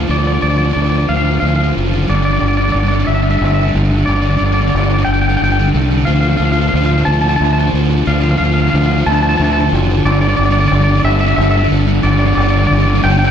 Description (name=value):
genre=post-rock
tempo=60 BPM (dotted quarters)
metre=6/8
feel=straight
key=unclear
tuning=A4 = 435 Hz
part: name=overdriven electric guitar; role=riff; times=0.0-13.3 s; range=G2 to F3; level=-16 LUFS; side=equal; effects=none
part: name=growling fingered electric bass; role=bass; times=0.0-13.3 s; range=F#1 to D2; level=-14 LUFS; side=equal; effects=overdrive
part: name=twangy electric guitar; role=melody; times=0.1-13.3 s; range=D5 to A5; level=-18 LUFS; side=left 1 dB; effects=analog delay
room=light reverb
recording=dark, warm production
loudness=-11 LUFS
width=side -8 dB against mid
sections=0.0-13.3 A section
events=build-up 0.0-13.3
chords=0.0 Dm; 2.1 G5; 6.1 Dm; 10.1 G5